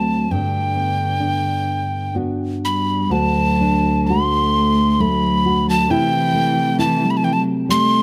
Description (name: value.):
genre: celtic folk, Celtic slow air.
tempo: 60-68 BPM.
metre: 3/4.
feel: rubato.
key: unclear.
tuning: A4 = 440 Hz.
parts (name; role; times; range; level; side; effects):
breathy mellow wooden whistle; melody; 0.0-8.0 s; G5 to C6; -22 LUFS; equal; none.
dark cello; second line; 0.0-8.0 s; D3 to A3; -24 LUFS; equal; none.
nylon-string guitar; accompaniment; 0.0-8.0 s; D2 to F#4; -22 LUFS; equal; none.
room: light reverb.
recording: close, detailed microphones.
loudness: -18 LUFS.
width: mono.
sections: 0.0-3.1 A section; 3.1-8.0 B section.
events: none.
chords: 0.3 Gmaj7; 3.1 D; 5.9 C6.